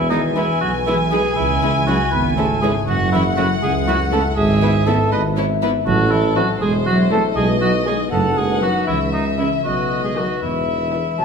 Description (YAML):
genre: cinematic, playful, whimsical film cue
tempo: 80 BPM (dotted quarters)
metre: 6/8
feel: straight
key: E major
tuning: A4 = 437 Hz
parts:
  - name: warm chamber violin section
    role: melody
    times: 0.0-11.2 s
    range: A4 to G#5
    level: -24 LUFS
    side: left 3 dB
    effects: none
  - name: mellow cor anglais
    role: second line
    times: 0.0-11.2 s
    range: D#4 to B4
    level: -21 LUFS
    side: right 2 dB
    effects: none
  - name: concert harp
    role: arpeggios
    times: 0.0-11.2 s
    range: F#2 to E5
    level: -25 LUFS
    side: left 9 dB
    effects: none
  - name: dark chamber cello section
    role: bass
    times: 0.0-11.2 s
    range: D#3 to B3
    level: -24 LUFS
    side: right 1 dB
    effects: none
  - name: dark chamber double bass section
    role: bass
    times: 0.0-11.2 s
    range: E1 to E2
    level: -24 LUFS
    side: right 3 dB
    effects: none
  - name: mellow tuba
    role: bass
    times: 0.0-11.2 s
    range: E1 to C#2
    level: -23 LUFS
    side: right 4 dB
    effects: none
  - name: warm chamber violin section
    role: second line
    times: 0.1-11.1 s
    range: G#3 to E4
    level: -28 LUFS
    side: left 4 dB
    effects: none
  - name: rich studio viola section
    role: accompaniment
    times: 0.1-11.2 s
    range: C#3 to B3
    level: -28 LUFS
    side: right 2 dB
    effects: none
  - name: bright concert flute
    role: second line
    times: 11.2 s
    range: A5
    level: -18 LUFS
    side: left 3 dB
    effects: none
room: wet recital hall reverb, RT60 1.5 s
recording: minimal, uncompressed stereo recording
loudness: -15 LUFS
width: side -6 dB against mid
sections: 0.0-11.2 A section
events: none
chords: 0.0 E; 1.4 C#m; 2.9 F#m7; 4.4 E/G#; 5.9 Am; 7.4 B; 8.9 C#m; 9.6 B7; 10.4 E